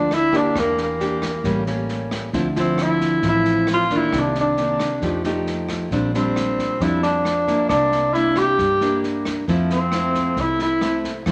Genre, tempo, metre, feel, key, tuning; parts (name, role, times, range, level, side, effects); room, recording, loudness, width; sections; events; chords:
bossa nova; 134 BPM; 4/4; straight; F major; A4 = 439 Hz
dark tenor saxophone; melody; 0.0-11.0 s; Bb3 to G4; -22 LUFS; equal
nylon-string guitar; accompaniment; 0.0-11.3 s; A2 to G4; -25 LUFS; equal
fingered electric bass; bass; 0.0-11.3 s; E1 to G2; -31 LUFS; equal
open jazz drum kit; drums; 0.1-11.3 s; kick drum, rim click, snare drum; -33 LUFS; equal
wet large studio reverb, RT60 1.2 s; -20 LUFS; mono
0.0-11.3 A section
0.0 Gm7; 0.6 Em7b5; 1.4 A7b9; 2.3 Dm9; 4.1 Cm9; 5.0 F9; 5.9 Bb69; 7.7 C9; 9.5 Fmaj7